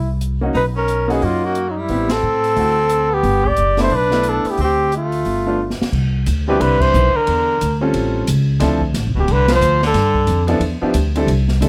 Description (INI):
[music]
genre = jazz, small-group swing and bop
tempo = 179 BPM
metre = 4/4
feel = swing 62% on 8ths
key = G major, C major from 5.9 s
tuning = A4 = 440 Hz
[part]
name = warm flugelhorn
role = melody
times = 0.0-10.5 s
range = D#4 to D5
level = -20 LUFS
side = equal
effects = none
[part]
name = upright bass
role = bass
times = 0.0-11.7 s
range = D1 to A2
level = -21 LUFS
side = equal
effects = none
[part]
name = open jazz drum kit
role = drums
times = 0.2-11.7 s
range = crash cymbal, hi-hat, kick drum, ride cymbal, snare drum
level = -28 LUFS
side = equal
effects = none
[part]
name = bright grand piano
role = accompaniment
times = 0.4-11.7 s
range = F3 to B4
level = -23 LUFS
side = equal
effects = none
[part]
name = bright tenor saxophone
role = second line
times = 0.5-10.5 s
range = B2 to G4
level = -27 LUFS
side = equal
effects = none
[sound]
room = little or no reverb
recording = close, detailed microphones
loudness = -17 LUFS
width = mono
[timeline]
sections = 0.0-5.9 A section; 5.9-11.7 B section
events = band accent 2.1, 6.8, 9.4; drum fill 5.6-5.9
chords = 0.0 Cm7b5; 0.6 Bmaj9; 1.9 Am7; 2.6 D7; 3.2 G6; 4.6 Dm7; 5.3 G7; 5.9 Cmaj9; 7.3 Em7b5; 7.9 A7alt; 8.6 Dm7; 9.9 G13